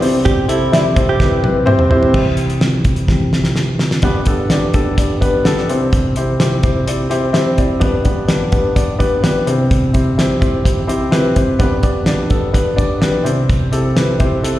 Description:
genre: piano-driven pop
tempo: 127 BPM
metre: 4/4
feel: straight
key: unclear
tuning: A4 = 440 Hz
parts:
  - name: warm baby grand piano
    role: accompaniment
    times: 0.0-14.6 s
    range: G1 to D5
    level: -15 LUFS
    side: left 1 dB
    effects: plate reverb, slapback echo
  - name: damped 70s drum kit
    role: drums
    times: 0.0-14.6 s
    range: crash cymbal, hi-hat, kick drum, snare drum, toms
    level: -16 LUFS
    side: equal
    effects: none
  - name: direct-recorded clean electric guitar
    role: riff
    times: 0.3-1.4 s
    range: E4 to G4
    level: -19 LUFS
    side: right 5 dB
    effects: phaser, slapback echo
room: moderate club reverb, RT60 0.5 s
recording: live gig heard through the venue's PA, recital hall reverb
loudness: -12 LUFS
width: side -14 dB against mid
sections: 0.0-2.1 A section; 2.1-4.0 B section; 4.0-14.6 C section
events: drum fill 1.2-2.1, 3.1-4.0; grand piano solo 2.1-4.0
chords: 0.0 C; 4.0 G; 5.7 C; 7.8 G; 9.5 C; 11.6 G; 13.3 C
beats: | 0.25 0.73 1.20 1.67 | 2.14 2.62 3.09 3.56 | 4.03 4.51 4.98 5.45 | 5.93 6.40 6.87 7.34 | 7.82 8.29 8.76 9.23 | 9.71 10.18 10.65 11.13 | 11.60 12.07 12.54 13.02 | 13.49 13.96 14.44

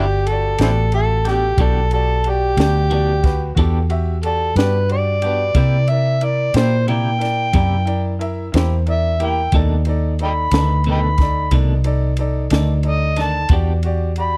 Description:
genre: slow blues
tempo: 60 BPM (dotted quarters)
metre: 12/8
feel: straight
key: E minor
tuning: A4 = 440 Hz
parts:
  - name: overdriven harmonica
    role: melody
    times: 0.0-14.4 s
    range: C4 to B5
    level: -22 LUFS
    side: equal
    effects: none
  - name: bright upright piano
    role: accompaniment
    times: 0.0-14.4 s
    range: D#4 to E5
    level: -29 LUFS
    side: equal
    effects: none
  - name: vintage muted fingered electric bass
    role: bass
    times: 0.0-14.4 s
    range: G1 to C3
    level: -20 LUFS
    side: equal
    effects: none
  - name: compact cocktail drum kit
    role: drums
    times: 0.3-14.3 s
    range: kick drum, ride cymbal, snare drum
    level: -21 LUFS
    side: equal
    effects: none
  - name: clean electric guitar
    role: accompaniment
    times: 0.6-13.7 s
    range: B2 to G4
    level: -28 LUFS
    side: equal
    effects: tremolo
room: small room ambience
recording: dry, close 1970s-style studio recording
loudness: -17 LUFS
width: mono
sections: 0.0-14.4 A section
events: harmonica solo 0.0-14.4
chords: 0.0 Em7; 5.6 C7; 9.5 B7#9; 13.5 Em7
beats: 0.59 | 1.59 2.58 3.57 4.57 | 5.56 6.55 7.55 8.54 | 9.54 10.53 11.53 12.52 | 13.52

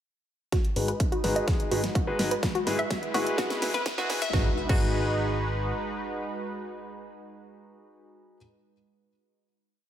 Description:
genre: progressive house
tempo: 126 BPM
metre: 4/4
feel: straight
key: G# minor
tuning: A4 = 436 Hz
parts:
  - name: lush unison pad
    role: sustained chords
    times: 1.0-8.0 s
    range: G#3 to B4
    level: -34 LUFS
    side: right 2 dB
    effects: chorus, sidechain pumping
  - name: analog pluck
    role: arpeggios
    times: 0.5-4.8 s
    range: F#4 to E5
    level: -32 LUFS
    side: right 1 dB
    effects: chorus, sidechain pumping, digital delay
  - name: big-room dance drum kit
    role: drums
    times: 0.5-4.8 s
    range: crash cymbal, hi-hat, snare drum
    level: -33 LUFS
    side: equal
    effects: studio reverb
  - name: electronic kick drum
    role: drums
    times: 0.5-4.8 s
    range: none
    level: -27 LUFS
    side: equal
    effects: studio reverb
  - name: riser and impact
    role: sound effects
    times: 2.6-8.1 s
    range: none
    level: -40 LUFS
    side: equal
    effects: none
  - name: warm baby grand piano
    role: stabs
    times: 0.8-8.4 s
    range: G#3 to B4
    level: -32 LUFS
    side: left 2 dB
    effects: sidechain pumping, low-pass filter, digital delay
  - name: plucky analog bass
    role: bass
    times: 0.8-5.7 s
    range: G#1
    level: -32 LUFS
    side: equal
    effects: sidechain pumping
room: light reverb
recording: high-pass filter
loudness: -25 LUFS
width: side -10 dB against mid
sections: 0.5-4.3 build; 4.3-8.1 final chord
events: build-up 0.5-4.3; drum fill 0.5-4.3; filter sweep on synth arpeggio sound 0.5-4.3; filter sweep on grand piano 0.5-4.3; filter sweep on analog synth pad 0.5-4.3; filter sweep 0.5-4.3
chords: 0.5 G#m7; 2.4 Eadd9/G#; 4.3 G#m7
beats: | 0.52 1.00 1.48 1.95 | 2.43 2.90 3.38 3.86 | 4.33 4.81 5.29 5.76 | 6.24 6.71 7.19 7.67

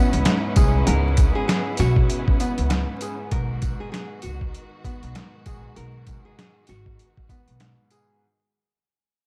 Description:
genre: hip hop, boom-bap hip-hop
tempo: 98 BPM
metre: 4/4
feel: swing 59% on 16ths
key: unclear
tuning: A4 = 438 Hz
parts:
  - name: dark upright piano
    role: accompaniment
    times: 0.0-8.2 s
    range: G#2 to G#4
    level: -31 LUFS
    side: equal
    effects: cassette tape, high-pass filter, low-pass filter
  - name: warm studio string section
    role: sustained chords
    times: 0.0-8.2 s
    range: D#3 to F#4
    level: -34 LUFS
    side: equal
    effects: high-pass filter, low-pass filter
  - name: upright bass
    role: bass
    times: 0.1-7.7 s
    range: G#1 to C#2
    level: -26 LUFS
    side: equal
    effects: none
  - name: boom bap sampler-style drum kit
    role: drums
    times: 0.1-8.1 s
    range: hi-hat, kick drum, snare drum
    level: -24 LUFS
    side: equal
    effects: none
  - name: tambourine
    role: percussion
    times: 0.6-8.1 s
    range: none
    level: -44 LUFS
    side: equal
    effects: none
  - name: nylon-string guitar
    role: melody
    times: 0.9-7.1 s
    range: F#4 to A#4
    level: -33 LUFS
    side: equal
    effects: high-pass filter, low-pass filter, digital delay
room: small room reverb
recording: vinyl crackle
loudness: -21 LUFS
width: mono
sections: 0.0-8.2 A section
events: fade-out 0.0-8.2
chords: 0.0 C#m7; 3.3 G#m7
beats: 0.26 | 0.87 1.48 2.09 2.71 | 3.32 3.93 4.54 5.15 | 5.77 6.38 6.99 7.60

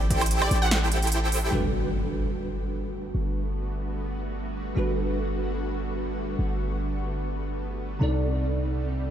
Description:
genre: future bass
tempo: 148 BPM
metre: 4/4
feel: swing 54% on 16ths, half-time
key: G major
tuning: A4 = 440 Hz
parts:
  - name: airy dreamy lead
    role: arpeggios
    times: 0.0-1.5 s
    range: G5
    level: -35 LUFS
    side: equal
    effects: chorus, vintage 12-bit sampler grit, sidechain pumping, tape echo
  - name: supersaw chords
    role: riff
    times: 0.0-1.5 s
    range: E4 to G5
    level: -30 LUFS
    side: right 1 dB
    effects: lush chorus, sidechain pumping, low-pass filter, tape echo
  - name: warm 808-style bass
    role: bass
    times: 0.0-9.1 s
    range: G1 to C2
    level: -28 LUFS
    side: equal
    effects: sidechain pumping
  - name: big-room dance drum kit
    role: drums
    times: 0.1-1.4 s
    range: hi-hat, snare drum, woodblock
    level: -28 LUFS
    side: right 2 dB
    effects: overdrive
  - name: wide unison pluck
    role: melody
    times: 0.4-0.8 s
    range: D5 to F#5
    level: -34 LUFS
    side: equal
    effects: sidechain pumping, tape echo
  - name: bell-like tine electric piano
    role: accompaniment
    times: 1.5-9.1 s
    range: C3 to D5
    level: -31 LUFS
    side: right 1 dB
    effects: ensemble chorus, sidechain pumping, tape echo
  - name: shimmering ambient pad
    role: sustained chords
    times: 2.8-9.1 s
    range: D3 to G4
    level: -36 LUFS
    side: equal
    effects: chorus, built-in reverb, sidechain pumping
  - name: impact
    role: sound effects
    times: 1.5-3.1 s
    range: none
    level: -34 LUFS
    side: equal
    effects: none
room: little or no reverb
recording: none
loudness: -25 LUFS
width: side -10 dB against mid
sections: 0.0-1.5 A section; 1.5-9.1 B section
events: drop 0.0-1.5; impact 1.5-3.1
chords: 0.0 Am7; 1.5 Gmaj9; 8.0 Cm6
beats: 0.31 0.71 1.12 | 1.52 1.93 2.33 2.74 | 3.15 3.55 3.96 4.36 | 4.77 5.17 5.58 5.98 | 6.39 6.79 7.20 7.61 | 8.01 8.42 8.82

